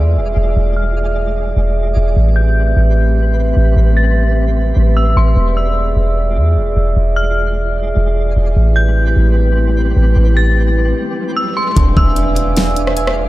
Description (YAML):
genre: hip hop, atmospheric cloud-rap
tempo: 150 BPM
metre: 4/4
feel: half-time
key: A minor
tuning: A4 = 440 Hz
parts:
  - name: dark detuned synth bell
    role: melody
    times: 0.0-13.3 s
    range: C6 to A6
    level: -22 LUFS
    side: left 1 dB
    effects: chorus, low-pass filter, dub echo
  - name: glass harmonica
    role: sustained chords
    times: 0.0-13.3 s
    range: A3 to G#5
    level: -20 LUFS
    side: right 1 dB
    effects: sidechain pumping, low-pass filter
  - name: warm 808-style bass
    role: bass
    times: 0.0-13.3 s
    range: E1 to E2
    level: -13 LUFS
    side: equal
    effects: none
  - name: twinkling granular texture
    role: texture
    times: 0.0-13.3 s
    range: G3 to D5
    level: -27 LUFS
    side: left 1 dB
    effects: built-in reverb
  - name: riser and impact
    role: sound effects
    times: 10.9-13.3 s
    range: none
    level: -25 LUFS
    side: equal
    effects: none
  - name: muted felt-like synth keys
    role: arpeggios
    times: 11.8-13.3 s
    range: D4 to G#5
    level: -24 LUFS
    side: right 1 dB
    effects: chorus, phaser, dub echo
  - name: smooth R&B drum kit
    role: drums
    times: 11.8-13.2 s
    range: hi-hat, kick drum, rim click, snare drum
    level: -15 LUFS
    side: equal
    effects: none
room: little or no reverb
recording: echo-heavy mix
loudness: -11 LUFS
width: side -17 dB against mid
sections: 0.0-11.8 A section; 11.8-13.3 B section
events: filter sweep 0.0-11.8; riser 10.9-11.8; stop 11.0-11.8; impact 11.8-13.3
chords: 0.0 E7b9; 2.2 Am9; 5.4 E7b9; 8.6 Am9; 11.8 E7b9